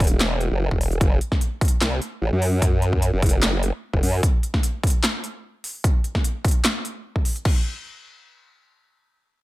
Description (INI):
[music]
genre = heavy wobble dubstep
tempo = 149 BPM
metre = 4/4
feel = swing 53% on 16ths, half-time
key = unclear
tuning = A4 = 438 Hz
[part]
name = formant-sweep wobble bass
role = bass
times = 0.0-4.2 s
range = E1 to F#2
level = -21 LUFS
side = equal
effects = chorus, overdrive
[part]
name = big-room dance drum kit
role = drums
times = 0.0-7.5 s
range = crash cymbal, handclaps, hi-hat, snare drum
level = -25 LUFS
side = equal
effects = none
[part]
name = electronic kick drum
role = drums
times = 0.0-7.5 s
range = none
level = -20 LUFS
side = equal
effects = none
[sound]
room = little or no reverb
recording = none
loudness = -19 LUFS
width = side -18 dB against mid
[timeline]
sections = 0.0-7.5 A section; 7.5-9.4 B section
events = drop 0.0-7.5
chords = none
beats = 0.20 0.61 | 1.01 1.41 1.81 2.22 | 2.62 3.02 3.42 3.83 | 4.23 4.63 5.04 5.44 | 5.84 6.24 6.65 7.05 | 7.45